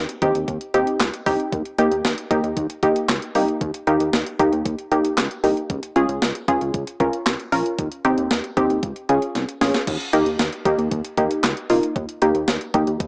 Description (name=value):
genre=synth-pop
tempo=115 BPM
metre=4/4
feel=straight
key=Eb mixolydian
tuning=A4 = 440 Hz
part: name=chorused synth bass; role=bass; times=0.0-13.1 s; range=Bb1 to Eb2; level=-26 LUFS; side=equal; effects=none
part: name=clean 12-bit digital drum machine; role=drums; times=0.1-13.1 s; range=crash cymbal, handclaps, hi-hat, kick drum, snare drum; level=-24 LUFS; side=equal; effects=none
part: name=warbly dusty pluck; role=accompaniment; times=0.2-12.9 s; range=Bb3 to Bb4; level=-20 LUFS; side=equal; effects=chorus
room=light reverb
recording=dry, gritty hardware recording, cassette tape, small speaker sound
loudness=-18 LUFS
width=side -35 dB against mid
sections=0.0-9.9 A section; 9.9-13.1 A section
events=drum fill 9.3-9.9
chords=0.0 Cm/Eb; 1.5 Eb; 5.7 Db; 7.8 Cm/Eb; 8.8 Db; 9.9 Eb